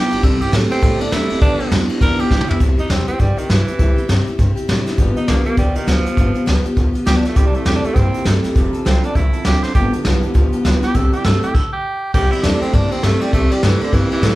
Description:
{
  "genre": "rockabilly",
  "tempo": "201 BPM",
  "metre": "4/4",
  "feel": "swing 61% on 8ths",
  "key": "C major",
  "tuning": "A4 = 439 Hz",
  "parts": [
    { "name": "raspy tenor saxophone", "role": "melody", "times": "0.0-14.4 s", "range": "D3 to C5", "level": "-23 LUFS", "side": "right 2 dB", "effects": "none" },
    { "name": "picked steel-string acoustic guitar", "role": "accompaniment", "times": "0.0-14.4 s", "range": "G2 to A4", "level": "-22 LUFS", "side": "left 2 dB", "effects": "none" },
    { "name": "electric guitar through a small old amp", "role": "riff", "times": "0.0-2.6, 7.4-14.4 s", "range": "F2 to Bb3", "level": "-23 LUFS", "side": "right 3 dB", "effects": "none" },
    { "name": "upright bass", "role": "bass", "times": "0.0-14.4 s", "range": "F1 to A2", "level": "-18 LUFS", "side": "equal", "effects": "none" },
    { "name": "vintage brush drum kit", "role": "drums", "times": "0.1-14.3 s", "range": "crash cymbal, hi-hat, kick drum, ride cymbal, snare drum, toms", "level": "-18 LUFS", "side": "equal", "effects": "none" }
  ],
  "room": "moderate large studio reverb, RT60 0.9 s",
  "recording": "band playing live in one room",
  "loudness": "-14 LUFS",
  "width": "side -17 dB against mid",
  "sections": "0.0-2.6 A section; 2.6-12.1 B section; 12.1-14.4 C section",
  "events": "drum fill 2.3; stop 11.5-12.1; tenor saxophone solo 12.1-14.4",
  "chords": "0.2 C; 1.4 G7; 2.6 C; 5.0 G7; 7.4 C; 8.6 F; 9.8 G7; 10.9 C"
}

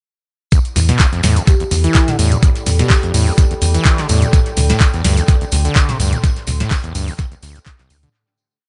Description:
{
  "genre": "acid house",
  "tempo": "126 BPM",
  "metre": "4/4",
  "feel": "swing 54% on 16ths",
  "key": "E minor",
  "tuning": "A4 = 437 Hz",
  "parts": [
    { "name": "overdriven acid bass", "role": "riff", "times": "0.5-8.1 s", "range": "C2 to E3", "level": "-22 LUFS", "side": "equal", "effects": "distortion, tube saturation, sidechain pumping, dub echo" },
    { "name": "booming analog drum machine", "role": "drums", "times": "0.5-8.1 s", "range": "handclaps, hi-hat, snare drum, toms", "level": "-23 LUFS", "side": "equal", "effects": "tape echo" },
    { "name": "damped 70s drum kit", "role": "drums", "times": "0.5-8.0 s", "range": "hi-hat, shaker, snare drum", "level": "-35 LUFS", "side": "equal", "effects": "none" },
    { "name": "electronic kick drum", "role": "drums", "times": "0.5-7.8 s", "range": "none", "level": "-15 LUFS", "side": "equal", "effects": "none" },
    { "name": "tambourine", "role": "percussion", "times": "0.5-8.1 s", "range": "none", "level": "-32 LUFS", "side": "equal", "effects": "tape echo" },
    { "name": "deep dark ambient pad", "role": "texture", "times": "1.8-8.1 s", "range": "A4 to C6", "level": "-30 LUFS", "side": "equal", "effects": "chorus, built-in reverb, sidechain pumping" },
    { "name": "round analog bass", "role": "bass", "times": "0.8-8.1 s", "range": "D2 to E2", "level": "-17 LUFS", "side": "equal", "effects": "tube saturation, sidechain pumping" },
    { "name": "marimba with soft mallets", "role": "melody", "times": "1.5-3.5 s", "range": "E4 to G4", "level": "-27 LUFS", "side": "equal", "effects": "tape echo" }
  ],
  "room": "small room ambience",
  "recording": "echo-heavy mix, nothing above 10.5 kHz",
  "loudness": "-14 LUFS",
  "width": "mono",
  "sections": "0.5-8.1 drop",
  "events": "drop 0.5-8.1; fade-out 5.6-8.1",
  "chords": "0.5 Em7; 4.3 D5"
}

